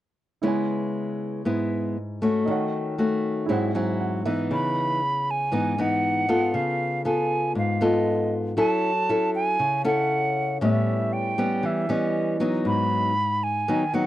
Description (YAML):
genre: bossa nova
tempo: 118 BPM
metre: 4/4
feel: straight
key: C# minor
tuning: A4 = 440 Hz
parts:
  - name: nylon-string guitar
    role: accompaniment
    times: 0.4-14.1 s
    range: G#2 to A4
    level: -23 LUFS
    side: left 1 dB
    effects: none
  - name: warm baby grand piano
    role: accompaniment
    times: 0.4-4.5 s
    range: D#4 to G#5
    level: -31 LUFS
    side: right 7 dB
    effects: none
  - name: hollow concert flute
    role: melody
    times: 4.5-14.1 s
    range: D#5 to B5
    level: -25 LUFS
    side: right 2 dB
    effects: none
room: little or no reverb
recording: dry, close 1970s-style studio recording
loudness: -22 LUFS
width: side -14 dB against mid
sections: 0.4-4.5 A section; 4.5-14.1 B section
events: grand piano fill 3.5-4.5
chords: 0.4 C#m7; 2.5 D#m7b5; 3.5 G#7alt; 4.5 C#m9; 6.5 C#7b13; 8.6 F#m7; 10.6 A9; 12.7 G#m7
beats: | 0.43 0.94 1.45 1.96 | 2.47 2.98 3.49 4.00 | 4.51 5.02 5.53 6.04 | 6.54 7.05 7.56 8.07 | 8.58 9.09 9.60 10.11 | 10.62 11.12 11.63 12.14 | 12.65 13.16 13.67